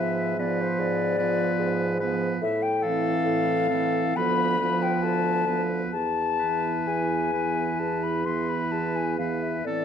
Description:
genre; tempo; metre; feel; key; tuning
classical, slow romantic movement for wind quintet; 62-75 BPM; 4/4; rubato; unclear; A4 = 440 Hz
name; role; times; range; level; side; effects
mellow concert flute; melody; 0.0-9.8 s; C5 to C6; -27 LUFS; left 7 dB; none
clear oboe; second line; 0.0-9.8 s; A4 to B4; -33 LUFS; left 1 dB; none
mellow French horn; accompaniment; 0.0-9.8 s; E3 to E#3; -30 LUFS; right 3 dB; none
warm clarinet; accompaniment; 0.0-9.8 s; B3 to C4; -33 LUFS; right 10 dB; none
dark bassoon; bass; 0.0-9.8 s; D2 to A2; -29 LUFS; right 2 dB; none
room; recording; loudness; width
moderate recital hall reverb, RT60 1.5 s; dark, warm production; -23 LUFS; side -8 dB against mid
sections
0.0-9.8 A section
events
none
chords
0.0 G#dim7; 2.4 Am; 4.2 Bdim/D; 5.9 E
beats
0.80 1.60 | 2.42 3.24 4.16 5.03 | 5.93 6.87 7.79 8.71 | 9.65

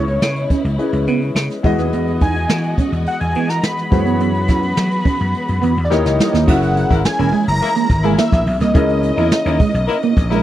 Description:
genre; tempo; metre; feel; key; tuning
polished 1980s jazz-funk pop; 106 BPM; 4/4; straight; unclear; A4 = 441 Hz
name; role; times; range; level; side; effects
fat analog lead; melody; 0.0-10.4 s; C#5 to B5; -21 LUFS; equal; none
warm concert grand piano; accompaniment; 0.0-10.4 s; A#3 to E5; -22 LUFS; left 3 dB; analog chorus
dark symphonic string section; sustained chords; 0.0-10.4 s; C#3 to D#5; -28 LUFS; left 2 dB; none
electric guitar at the edge of break-up; riff; 0.0-10.4 s; G3 to F#4; -20 LUFS; right 7 dB; lush chorus
vintage slap bass; bass; 0.0-10.4 s; E1 to F#3; -19 LUFS; equal; none
jazz brush drum kit; drums; 0.1-10.4 s; crash cymbal, hi-hat, kick drum, snare drum; -17 LUFS; equal; none
warm horn section; second line; 6.9-10.4 s; A#3 to A#4; -22 LUFS; left 6 dB; none
room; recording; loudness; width
little or no reverb; dry, close 1970s-style studio recording, lossy compression artefacts; -14 LUFS; side -13 dB against mid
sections
0.0-6.5 A section; 6.5-10.4 B section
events
drum fill 5.9-6.5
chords
0.0 C#m7; 1.6 Emaj9; 3.9 F#9sus4; 5.9 D#7b9; 6.5 F#9; 8.8 C#m69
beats
0.22 0.79 1.36 | 1.93 2.50 3.07 3.63 | 4.20 4.77 5.34 5.91 | 6.48 7.05 7.61 8.18 | 8.75 9.32 9.89

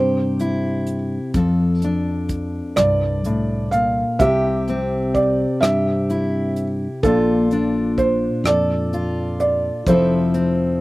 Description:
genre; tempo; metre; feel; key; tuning
acoustic folk-pop ballad; 42 BPM (dotted quarters); 6/8; straight; F major; A4 = 440 Hz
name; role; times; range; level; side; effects
felt-muted upright piano; melody; 0.0-10.8 s; D4 to F5; -20 LUFS; right 2 dB; none
fingerpicked steel-string acoustic guitar; accompaniment; 0.0-10.8 s; F2 to A4; -20 LUFS; left 1 dB; none
fingered electric bass; bass; 0.0-10.8 s; F1 to G2; -24 LUFS; equal; none
soft brush drum kit; drums; 0.4-10.6 s; hi-hat, kick drum, rim click; -26 LUFS; equal; none
room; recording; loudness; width
little or no reverb; recorded outdoors, with no room sound; -17 LUFS; side -19 dB against mid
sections
0.0-10.8 A section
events
none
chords
0.0 C; 1.4 F6; 4.2 C; 7.0 Bbmaj7; 9.9 Fmaj7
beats
| 1.35 2.78 | 4.20 5.62 | 7.04 8.45 | 9.87

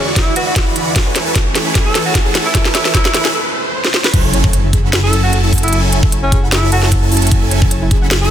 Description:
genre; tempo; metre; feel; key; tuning
future bass; 151 BPM; 4/4; half-time; F# minor; A4 = 437 Hz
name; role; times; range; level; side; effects
breathy alto saxophone; melody; 0.0-8.3 s; C#4 to B4; -21 LUFS; equal; vintage 12-bit sampler grit, sidechain pumping, ping-pong delay
airy breathy pad; sustained chords; 0.0-8.3 s; E2 to G#5; -28 LUFS; right 2 dB; chorus, sidechain pumping
soft round pluck; arpeggios; 0.0-8.3 s; E4 to G#5; -26 LUFS; left 1 dB; ensemble chorus, sidechain pumping, ping-pong delay
supersaw chords; riff; 0.0-8.3 s; E3 to C#6; -19 LUFS; right 1 dB; phaser, sidechain pumping
riser and impact; sound effects; 0.1-5.7 s; none; -23 LUFS; equal; none
electronic kick drum; drums; 0.2-8.0 s; none; -14 LUFS; equal; small room ambience
trap drum kit; drums; 0.2-8.2 s; crash cymbal, hi-hat, snare drum; -17 LUFS; equal; small room ambience
fat analog bass; bass; 4.1-8.3 s; F#1; -15 LUFS; equal; sidechain pumping
room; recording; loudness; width
light reverb, digital ambience; dense, heavily limited modern master; -11 LUFS; side -10 dB against mid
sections
0.0-4.1 A section; 4.1-8.3 B section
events
build-up 0.0-4.1; drum fill 0.0-3.3, 3.8; riser 0.1-4.1; break 3.3-4.1; drop 4.1-8.3; impact 4.1-5.7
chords
0.0 E9; 1.0 Amaj9/E; 4.1 F#m9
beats
0.16 0.56 | 0.96 1.35 1.75 2.15 | 2.55 2.94 3.34 3.74 | 4.14 4.53 4.93 5.33 | 5.73 6.12 6.52 6.92 | 7.32 7.71 8.11

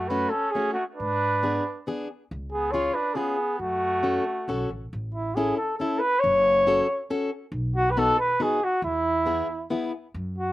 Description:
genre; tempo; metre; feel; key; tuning
alpine folk, alpine dance band; 137 BPM; 3/4; rubato; F# minor, A major from 4.9 s; A4 = 440 Hz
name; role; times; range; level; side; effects
mellow flugelhorn; melody; 0.0-10.5 s; E4 to C#5; -23 LUFS; equal; none
warm trumpet; second line; 0.0-4.7 s; A3 to F#4; -33 LUFS; right 3 dB; slapback echo
upright bass; bass; 0.0-10.5 s; F#1 to G#2; -32 LUFS; equal; none
fingerpicked plugged-in steel-string acoustic guitar; accompaniment; 0.1-9.9 s; A3 to A4; -28 LUFS; left 2 dB; slapback echo
room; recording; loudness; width
little or no reverb; recorded outdoors, with no room sound; -23 LUFS; side -16 dB against mid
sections
0.0-4.9 A section; 4.9-10.5 B section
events
none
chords
0.0 F#m; 1.0 G#dim; 2.3 C#7; 3.6 F#m; 4.9 A; 6.2 F#m; 7.5 B; 8.8 E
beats
0.10 0.55 | 0.99 1.43 1.87 | 2.31 2.73 3.16 | 3.60 4.03 4.48 | 4.92 5.36 5.80 | 6.23 6.66 7.09 | 7.52 7.96 8.39 | 8.83 9.27 9.71 | 10.15

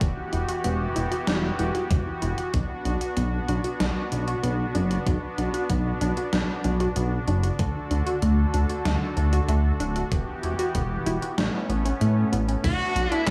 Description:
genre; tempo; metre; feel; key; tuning
synthwave; 95 BPM; 4/4; straight; B minor; A4 = 437 Hz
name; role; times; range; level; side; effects
soft supersaw; sustained chords; 0.0-13.3 s; D3 to A4; -33 LUFS; equal; sidechain pumping
analog pluck; arpeggios; 0.0-13.3 s; A3 to F#4; -33 LUFS; equal; chorus, digital delay
chorused synth bass; bass; 0.0-13.3 s; D1 to A2; -27 LUFS; equal; none
electronic kick drum; drums; 0.0-13.3 s; none; -29 LUFS; equal; overdrive
gated 80s digital drum machine; drums; 0.0-13.3 s; crash cymbal, handclaps, hi-hat, snare drum; -34 LUFS; equal; gated reverb, gated reverb snare, overdrive
smooth overdriven lead guitar; melody; 12.6-13.3 s; F#4 to A4; -28 LUFS; equal; none
string machine, violins; second line; 12.6-13.3 s; F#4 to A4; -33 LUFS; equal; none
room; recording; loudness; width
light reverb, digital ambience; small room ambience; -25 LUFS; mono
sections
0.0-12.6 A section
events
kick drops out 12.0-12.6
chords
0.0 Emadd9; 2.5 Bm; 7.6 D; 10.1 Emadd9; 11.4 Aadd9; 12.6 Bm7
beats
| 0.01 0.64 1.27 1.91 | 2.54 3.17 3.80 4.43 | 5.07 5.70 6.33 6.96 | 7.59 8.22 8.85 9.49 | 10.12 10.75 11.38 12.01 | 12.64 13.28

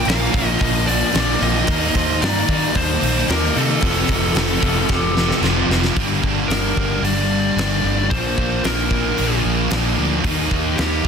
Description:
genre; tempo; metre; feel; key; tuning
rock, shoegaze and dream pop; 112 BPM; 4/4; straight; G minor; A4 = 442 Hz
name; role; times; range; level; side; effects
fuzz lead guitar; melody; 0.0-11.1 s; G4 to F5; -24 LUFS; left 2 dB; distortion, tape echo
picked twelve-string acoustic guitar; arpeggios; 0.0-6.0 s; F4 to C5; -30 LUFS; right 2 dB; wide subtle chorus, tape echo
fuzz guitar; riff; 0.0-11.1 s; F2 to Eb4; -24 LUFS; left 12 dB; distortion, analog chorus
overdriven electric guitar; riff; 0.0-11.1 s; F2 to Eb4; -23 LUFS; right 12 dB; reverse reverb
overdriven electric guitar; riff; 0.0-11.1 s; F2 to Eb4; -25 LUFS; equal; none
vintage muted fingered electric bass; bass; 0.1-11.1 s; F1 to Eb3; -23 LUFS; equal; none
huge arena drum kit; drums; 0.1-11.1 s; hi-hat, kick drum, snare drum; -22 LUFS; equal; none
room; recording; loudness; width
small room reverb; dense, heavily limited modern master; -16 LUFS; side -6 dB against mid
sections
0.0-6.0 A section; 6.0-11.1 B section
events
drum fill 4.9-6.0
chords
0.0 Bb; 1.7 Eb; 3.8 F; 6.0 Gm; 8.1 Bb; 10.2 Eb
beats
0.06 0.60 1.13 | 1.67 2.21 2.74 3.27 | 3.81 4.35 4.88 5.42 | 5.95 6.49 7.03 7.56 | 8.10 8.63 9.17 9.71 | 10.24 10.78

